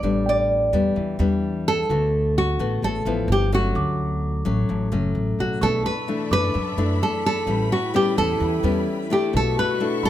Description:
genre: bossa nova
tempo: 129 BPM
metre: 4/4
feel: straight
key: D major, B minor from 5.6 s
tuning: A4 = 440 Hz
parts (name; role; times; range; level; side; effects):
- nylon-string guitar; melody; 0.0-10.1 s; F#4 to D5; -23 LUFS; right 1 dB; none
- nylon-string guitar; accompaniment; 0.0-10.1 s; F#2 to F#4; -25 LUFS; left 4 dB; none
- upright bass; bass; 0.0-10.1 s; F#1 to F#2; -24 LUFS; right 1 dB; none
- mellow tine electric piano; accompaniment; 0.3-10.1 s; G5 to D6; -35 LUFS; right 3 dB; none
- breathy mellow large flute ensemble; second line; 5.6-10.1 s; D4 to F#4; -31 LUFS; equal; none
- warm symphonic string section; sustained chords; 5.6-10.1 s; D4 to C#6; -35 LUFS; left 4 dB; none
room: light reverb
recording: close, detailed microphones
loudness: -19 LUFS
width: side -12 dB against mid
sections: 0.0-5.6 A section; 5.6-10.1 B section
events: none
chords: 0.0 A9sus4; 1.9 D6; 3.3 G13; 3.8 Dmaj7; 5.6 Bm11; 7.5 A9; 9.3 Bm11

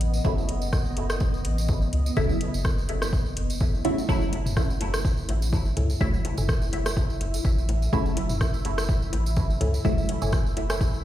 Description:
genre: dub techno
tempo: 125 BPM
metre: 4/4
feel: swing 55% on 16ths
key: F# dorian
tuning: A4 = 440 Hz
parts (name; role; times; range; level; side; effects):
- soft dub sub bass; bass; 0.0-11.0 s; F#1 to C#2; -27 LUFS; equal; sidechain pumping
- soft vintage rhythm box; drums; 0.0-10.8 s; hi-hat, rim click; -33 LUFS; equal; dub echo
- bubbling stepped-filter texture; texture; 0.0-11.0 s; B3 to E5; -35 LUFS; equal; chorus, built-in reverb, sidechain pumping
- tambourine; percussion; 0.1-11.0 s; none; -40 LUFS; right 3 dB; none
- filtered dub chord stab; stabs; 0.2-10.1 s; C#3 to E4; -30 LUFS; right 1 dB; phaser, sidechain pumping, dub echo
- electronic kick drum; drums; 0.2-10.9 s; none; -24 LUFS; equal; none
- electronic bongos and toms; percussion; 4.1-10.9 s; none; -35 LUFS; left 2 dB; sidechain pumping on perc, sidechain pumping on toms, dub echo
- filtered dub chord stab; riff; 5.8-10.9 s; A4 to G#5; -36 LUFS; right 1 dB; phaser, sidechain pumping, dub echo
room: light reverb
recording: played on a big sound system in a bare room, large studio reverb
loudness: -22 LUFS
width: side -12 dB against mid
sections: 0.0-11.0 A section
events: none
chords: 0.0 F#m7

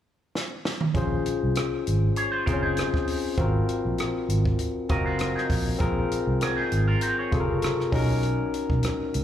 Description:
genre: lush 1970s-style soul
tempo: 99 BPM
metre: 4/4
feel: swing 54% on 16ths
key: Bb minor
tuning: A4 = 440 Hz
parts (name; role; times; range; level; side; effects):
- compact cocktail drum kit; drums; 0.4-9.2 s; hi-hat, kick drum, rim click, snare drum, toms; -29 LUFS; right 1 dB; none
- barky tine electric piano; accompaniment; 0.9-9.2 s; C3 to F5; -27 LUFS; left 4 dB; overdrive, slapback echo
- vintage muted fingered electric bass; bass; 1.0-9.2 s; Gb1 to C#2; -25 LUFS; right 1 dB; none
- electric guitar with an envelope filter; riff; 2.2-7.9 s; Db4 to Eb5; -30 LUFS; right 2 dB; phaser, slapback echo
room: light reverb, studio ambience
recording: live gig heard through the venue's PA, club reverb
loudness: -23 LUFS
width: side -10 dB against mid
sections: 0.9-9.2 A section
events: drum fill 0.3-0.9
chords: 0.0 N.C.; 0.9 Bbm9; 3.4 Ab13; 5.8 Gbmaj9#11; 7.9 Bmaj9

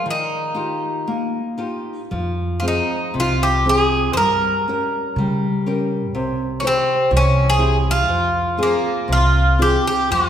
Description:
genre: fado-style ballad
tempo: 60 BPM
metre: 2/4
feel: uneven beats, rubato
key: F minor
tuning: A4 = 440 Hz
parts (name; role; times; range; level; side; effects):
- Greek bouzouki; melody; 0.0-10.3 s; Bb3 to C5; -19 LUFS; equal; none
- nylon-string guitar; accompaniment; 0.0-10.3 s; C3 to C5; -22 LUFS; left 1 dB; none
- upright bass; bass; 2.1-10.3 s; C2 to Db3; -21 LUFS; equal; none
room: wet scoring stage reverb, RT60 1.8 s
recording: recorded in a church or concert hall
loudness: -16 LUFS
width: side -9 dB against mid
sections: 0.0-10.1 A section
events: none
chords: 0.1 Ebadd9; 2.1 Fm; 4.2 Gdim; 6.1 C; 8.1 Fm

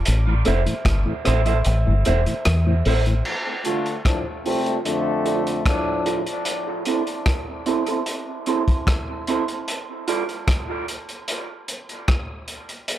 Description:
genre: dub reggae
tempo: 75 BPM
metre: 4/4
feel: straight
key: D minor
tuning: A4 = 440 Hz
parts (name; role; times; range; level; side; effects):
- deep dub fingered electric bass; bass; 0.1-3.2 s; E1 to E2; -18 LUFS; equal; none
- crunchy breakbeat drum kit; drums; 0.1-13.0 s; crash cymbal, hi-hat, kick drum, rim click; -24 LUFS; equal; none
- mellow tonewheel organ; accompaniment; 0.3-3.1 s; A2 to E4; -28 LUFS; left 2 dB; chorus vibrato, slow rotary speaker, high-pass filter, dub echo
- electric guitar through a small old amp; accompaniment; 0.5-10.2 s; C4 to E5; -26 LUFS; right 5 dB; high-pass filter, low-pass filter, dub echo
- mellow trombone section; second line; 3.6-6.2 s; F2 to F4; -25 LUFS; left 2 dB; high-pass filter, dub echo
room: light reverb, small room ambience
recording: echo-heavy mix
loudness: -20 LUFS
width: side -12 dB against mid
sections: 0.0-3.2 A section; 3.2-13.0 B section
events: kick muted 1.7-3.2; filter sweep on clean electric guitar 3.2-13.0; break 6.5-13.0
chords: 0.1 Am; 3.2 Dm; 6.5 Am; 9.7 Dm

